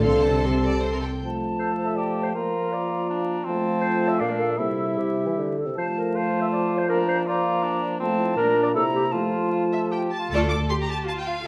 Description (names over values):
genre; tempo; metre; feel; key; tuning
quick classical-period movement for symphony orchestra; 149-166 BPM; 3/4; rubato; F major; A4 = 439 Hz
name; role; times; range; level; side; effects
rich chamber violin section; melody; 0.0-1.2, 9.7-11.5 s; E5 to D6; -34 LUFS; equal; none
rich studio violin section; second line; 0.0-1.1, 10.3-10.5 s; A4 to A5; -33 LUFS; equal; none
dark bassoon; accompaniment; 0.0-10.1 s; Bb2 to F3; -30 LUFS; equal; none
rich studio viola section; accompaniment; 0.0-1.0, 10.3-10.5 s; A3 to A4; -31 LUFS; equal; none
rich chamber cello section; bass; 0.0-1.0, 10.3-11.4 s; C3 to A4; -30 LUFS; equal; none
rich chamber double bass section; bass; 0.0-1.0, 10.3-10.6 s; C2 to D2; -30 LUFS; equal; none
silver concert flute; second line; 1.2-10.1 s; E5 to Bb5; -32 LUFS; equal; none
warm French horn section; sustained chords; 1.2-10.1 s; G3 to F4; -31 LUFS; equal; none
mellow clarinet; second line; 1.6-10.1 s; F4 to E5; -30 LUFS; equal; none
mellow cor anglais; second line; 1.6-10.3 s; C4 to A4; -33 LUFS; equal; none
room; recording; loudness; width
wet recital hall reverb, RT60 1.4 s; vinyl crackle; -24 LUFS; mono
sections
0.0-1.2 A section; 1.2-10.3 B section; 10.3-11.5 A section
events
none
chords
0.0 F/C; 0.8 C5; 1.2 F; 2.4 Bb/F; 3.5 F; 4.2 Bb; 4.6 C; 5.8 F; 6.9 Bb/F; 8.0 F; 8.4 Bb; 8.8 C7; 9.1 F; 10.3 Dm